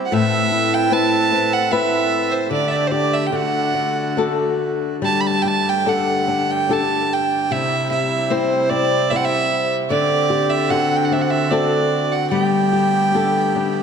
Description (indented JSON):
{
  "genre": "celtic folk, Celtic slow air",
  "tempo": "74 BPM",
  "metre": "3/4",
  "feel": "uneven beats, rubato",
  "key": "G major",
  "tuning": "A4 = 440 Hz",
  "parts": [
    { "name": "flamenco guitar", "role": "accompaniment", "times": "0.0-13.8 s", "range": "A2 to C5", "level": "-20 LUFS", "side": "left 3 dB", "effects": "none" },
    { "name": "accordion", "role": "sustained chords", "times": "0.0-13.8 s", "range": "G2 to B4", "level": "-26 LUFS", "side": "right 1 dB", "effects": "none" },
    { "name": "rich fiddle", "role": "melody", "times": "0.1-13.8 s", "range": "C5 to B5", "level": "-19 LUFS", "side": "right 4 dB", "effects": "none" }
  ],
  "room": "wet concert hall reverb, RT60 2.6 s",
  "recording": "dark, warm production",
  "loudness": "-16 LUFS",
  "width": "side -6 dB against mid",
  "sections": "0.0-13.8 A section",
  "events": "none",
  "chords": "0.1 Amadd9; 2.5 Dsus4; 3.3 D; 5.0 Gsus2; 7.5 C; 9.9 D7sus4; 10.7 D7; 12.3 Gadd9"
}